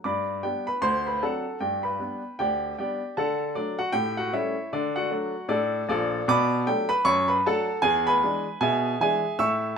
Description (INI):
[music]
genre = jazz, stride piano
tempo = 154 BPM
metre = 4/4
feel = swing 60% on 8ths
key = G major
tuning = A4 = 440 Hz
[part]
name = clear baby grand piano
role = solo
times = 0.0-9.8 s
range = Bb1 to E6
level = -23 LUFS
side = equal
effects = none
[sound]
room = moderate club reverb, RT60 0.8 s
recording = minimal, uncompressed stereo recording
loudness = -23 LUFS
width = side -6 dB against mid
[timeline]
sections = 0.0-9.8 A section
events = none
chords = 0.0 G; 0.8 D7; 1.6 G; 3.2 D; 3.9 A7; 4.7 D; 6.3 Bm7; 7.8 E7